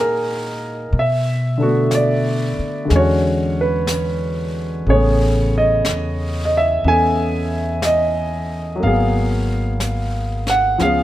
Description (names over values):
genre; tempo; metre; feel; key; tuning
jazz ballad; 61 BPM; 4/4; swing 68% on 8ths; unclear; A4 = 439 Hz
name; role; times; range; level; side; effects
warm grand piano; accompaniment; 0.0-11.0 s; C#3 to G#5; -18 LUFS; equal; none
upright bass; bass; 0.0-11.0 s; G#1 to B2; -20 LUFS; equal; none
jazz brush drum kit; drums; 0.9-11.0 s; brushed snare drum, hi-hat, snare drum; -30 LUFS; left 2 dB; none
room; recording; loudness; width
little or no reverb; close, detailed microphones; -16 LUFS; side -14 dB against mid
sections
0.0-11.0 A section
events
none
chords
0.0 F#69; 0.9 Bm7; 2.9 E13; 4.9 Amaj9; 8.8 G#m9